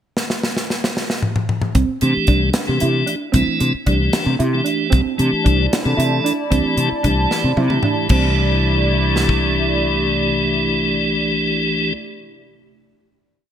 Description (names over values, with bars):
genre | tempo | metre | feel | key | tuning
electric jazz fusion | 76 BPM (dotted quarters) | 6/8 | straight | C major | A4 = 439 Hz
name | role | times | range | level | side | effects
tight funk drum kit | drums | 0.2-9.4 s | crash cymbal, hi-hat, kick drum, snare drum, toms | -20 LUFS | equal | gated reverb
mellow electric guitar | stabs | 1.7-8.3 s | C4 to E4 | -24 LUFS | right 5 dB | ensemble chorus, digital delay
fretless electric bass | bass | 1.8-11.9 s | C2 to C3 | -19 LUFS | equal | wide subtle chorus
tonewheel organ | accompaniment | 2.0-11.9 s | E3 to A4 | -19 LUFS | equal | slow rotary speaker
hollow soft pad | sustained chords | 5.2-11.9 s | C3 to A5 | -25 LUFS | equal | chorus
room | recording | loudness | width
light reverb, studio ambience | bright 1980s-style digital production | -15 LUFS | side -9 dB against mid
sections
0.2-1.8 pickup bar; 1.8-8.1 groove; 8.1-11.3 final chord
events
drum fill 0.2-1.8, 7.3-8.1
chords
0.2 N.C.; 1.8 C69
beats
| 0.16 0.95 | 1.75 2.54 | 3.34 4.13 | 4.92 5.72 | 6.51 7.30 | 8.10 8.89 | 9.69 10.48